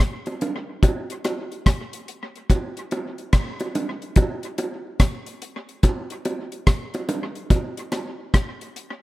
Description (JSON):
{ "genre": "reggae", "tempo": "72 BPM", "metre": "4/4", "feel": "swing 64% on 16ths", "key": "none", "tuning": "none", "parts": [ { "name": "deep reggae drum kit", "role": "drums", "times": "0.0-9.0 s", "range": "hi-hat, kick drum, rim click", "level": "-19 LUFS", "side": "equal", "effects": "none" }, { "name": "bongos", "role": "percussion", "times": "0.3-8.2 s", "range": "none", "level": "-28 LUFS", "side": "right 1 dB", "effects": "none" } ], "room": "light reverb, small room ambience", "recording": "rough home demo mix", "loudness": "-22 LUFS", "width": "side -19 dB against mid", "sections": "0.0-9.0 A section", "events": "none", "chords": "none" }